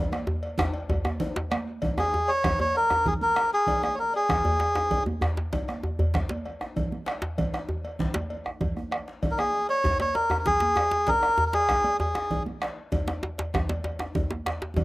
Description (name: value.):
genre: west african traditional, West African drum ensemble.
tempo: 130 BPM (dotted quarters).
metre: 12/8.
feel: straight.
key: unclear.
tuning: A4 = 436 Hz.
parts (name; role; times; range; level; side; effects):
bombo; percussion; 0.1-14.8 s; none; -31 LUFS; equal; none.
congas; percussion; 0.1-14.8 s; none; -34 LUFS; right 3 dB; none.
cowbell; percussion; 0.1-14.8 s; none; -38 LUFS; left 1 dB; slapback echo.
djembe; percussion; 0.1-14.8 s; none; -37 LUFS; left 2 dB; slapback echo.
djembe; percussion; 0.3-14.8 s; none; -29 LUFS; equal; none.
melodica; melody; 2.0-5.0, 9.3-12.4 s; Ab4 to Db5; -22 LUFS; equal; none.
room: little or no reverb.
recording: recorded outdoors, with no room sound.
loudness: -24 LUFS.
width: side -19 dB against mid.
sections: 0.0-1.8 A section; 1.8-14.8 B section.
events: drum fill 0.0-1.8, 8.5-9.2.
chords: none.